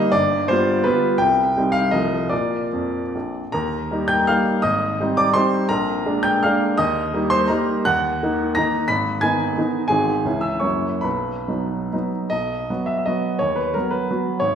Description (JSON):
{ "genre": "classical, romantic triple-time dance for piano with dotted rhythms", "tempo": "130-192 BPM", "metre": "3/4", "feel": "rubato", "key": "Eb major, B major from 7.9 s", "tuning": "A4 = 441 Hz", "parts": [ { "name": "clear baby grand piano", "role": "solo", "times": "0.0-14.6 s", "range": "G1 to B6", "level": "-18 LUFS", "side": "equal", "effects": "none" } ], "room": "wet recital hall reverb, RT60 1.7 s", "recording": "heard from further back in the room", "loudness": "-18 LUFS", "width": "side -8 dB against mid", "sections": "0.0-3.5 A section; 3.5-12.3 B section; 12.3-14.6 C section", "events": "none", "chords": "0.1 G7; 1.2 Cm; 1.9 F7/C; 2.3 Bb; 3.5 Eb; 4.6 Abmaj7; 5.7 Bb7; 6.8 Eb; 7.9 D#m; 8.9 G#m; 9.9 G#7; 10.3 C#m; 10.6 F#7; 11.1 B; 13.4 B/D#" }